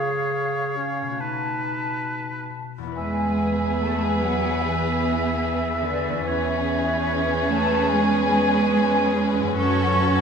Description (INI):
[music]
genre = cinematic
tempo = 67-74 BPM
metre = 4/4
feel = rubato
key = unclear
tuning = A4 = 440 Hz
[part]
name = bright oboe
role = second line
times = 0.0-10.2 s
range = B4 to E5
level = -29 LUFS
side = right 1 dB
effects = none
[part]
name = dark clarinet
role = second line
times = 0.0-10.2 s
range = Db4 to B4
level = -33 LUFS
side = right 1 dB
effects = none
[part]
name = flute section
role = second line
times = 0.0-10.2 s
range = D5 to C#6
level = -28 LUFS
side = left 1 dB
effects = none
[part]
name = concert harp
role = arpeggios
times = 0.0-10.2 s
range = E2 to B4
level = -34 LUFS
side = left 8 dB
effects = none
[part]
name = rich symphonic violin section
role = melody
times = 3.0-10.2 s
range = A4 to B4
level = -32 LUFS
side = left 5 dB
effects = none
[part]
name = warm symphonic violin section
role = second line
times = 3.0-10.2 s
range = F#4 to G#4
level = -30 LUFS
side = left 5 dB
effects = none
[part]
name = warm symphonic viola section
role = accompaniment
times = 3.0-10.2 s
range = B3 to C#4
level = -30 LUFS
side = right 1 dB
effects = none
[part]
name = dark French horn section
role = sustained chords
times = 3.0-10.2 s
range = B3 to B4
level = -29 LUFS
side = right 2 dB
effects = none
[part]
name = rich symphonic cello section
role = bass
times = 3.0-10.2 s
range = D3 to C#4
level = -25 LUFS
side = right 3 dB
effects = none
[part]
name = warm studio double bass section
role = bass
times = 3.0-10.2 s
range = E2 to F#2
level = -29 LUFS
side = right 2 dB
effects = none
[sound]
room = wet scoring stage reverb, RT60 1.5 s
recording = minimal, uncompressed stereo recording, lossy compression artefacts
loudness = -20 LUFS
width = side -6 dB against mid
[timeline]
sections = 0.0-3.0 A section; 3.0-10.2 A section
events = none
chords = 0.0 Db; 1.2 B7; 3.0 E; 6.3 C#m7/E; 9.6 F#m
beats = 0.32 1.20 2.08 | 2.96 3.80 4.63 5.44 | 6.26 7.09 7.91 8.73 | 9.58